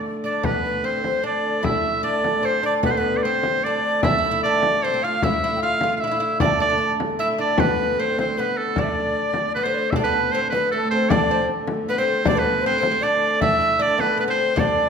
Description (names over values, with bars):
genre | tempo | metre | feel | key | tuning
medieval dance | 153 BPM | 3/4 | straight | D dorian | A4 = 440 Hz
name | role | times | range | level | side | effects
dark hurdy-gurdy | drone | 0.0-14.9 s | D3 to A3 | -28 LUFS | equal | none
breathy alto recorder | second line | 0.2-14.9 s | A4 to G5 | -25 LUFS | left 6 dB | none
oud | second line | 0.2-14.9 s | A3 to F4 | -27 LUFS | right 5 dB | none
bright shawm | melody | 0.3-14.9 s | A4 to F5 | -22 LUFS | right 3 dB | none
frame drum | percussion | 0.4-14.8 s | none | -25 LUFS | left 3 dB | none
room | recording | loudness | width
wet recital hall reverb, RT60 1.4 s | minimal, uncompressed stereo recording | -18 LUFS | side -6 dB against mid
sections
0.4-9.9 A section; 9.9-14.9 B section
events
speeding up 0.0-14.9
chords
none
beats
0.04 | 0.45 0.85 1.25 | 1.65 2.05 2.45 | 2.85 3.25 3.64 | 4.04 4.44 4.83 | 5.23 5.62 6.02 | 6.42 6.81 7.20 | 7.59 7.99 8.38 | 8.77 9.16 9.55 | 9.94 10.33 10.72 | 11.11 11.49 11.88 | 12.27 12.65 13.04 | 13.43 13.81 14.19 | 14.58